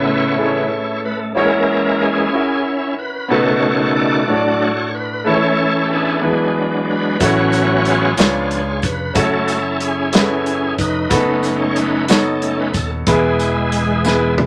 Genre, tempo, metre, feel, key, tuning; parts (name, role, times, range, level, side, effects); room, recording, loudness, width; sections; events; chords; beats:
slow gospel; 62 BPM (dotted quarters); 6/8; straight; A major; A4 = 440 Hz
clear concert grand piano; accompaniment; 0.0-14.5 s; A2 to E5; -21 LUFS; equal
bright tonewheel organ; sustained chords; 0.0-14.3 s; C#3 to D5; -20 LUFS; equal; fast rotary speaker, overdrive, chorus vibrato
fingered electric bass; bass; 7.2-14.5 s; D#1 to C#2; -26 LUFS; equal
natural country drum kit; drums; 7.2-14.5 s; hi-hat, kick drum, snare drum, toms; -20 LUFS; equal
tambourine; percussion; 7.2-14.3 s; -35 LUFS; equal
moderate studio ambience, RT60 0.5 s; -17 LUFS; mono
0.0-14.5 A section
tonewheel organ solo 0.0-14.5; drum fill 14.0-14.5
0.0 Amaj7; 1.4 F#7; 3.3 B7; 4.3 D/A; 5.3 A/E; 6.2 E7; 7.2 A6; 8.2 C#7b9; 9.2 F#m7; 11.1 B7/F#; 13.1 E
0.39 | 1.36 2.34 | 3.31 4.28 | 5.26 6.23 | 7.21 8.18 | 9.16 10.13 | 11.11 12.09 | 13.07 14.04